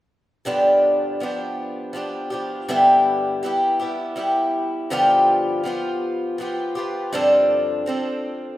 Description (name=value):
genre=folk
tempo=81 BPM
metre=3/4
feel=straight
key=G mixolydian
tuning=A4 = 440 Hz
part: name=picked twelve-string acoustic guitar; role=accompaniment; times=0.5-8.6 s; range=G2 to A4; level=-18 LUFS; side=equal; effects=none
room=wet recital hall reverb, RT60 1.5 s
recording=minimal, uncompressed stereo recording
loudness=-18 LUFS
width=side -15 dB against mid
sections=0.5-8.6 A section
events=none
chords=0.5 G7; 2.7 Em7/G; 4.9 G7; 7.1 Dm7/G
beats=| 0.47 1.21 1.95 | 2.69 3.43 4.17 | 4.92 5.66 6.39 | 7.13 7.87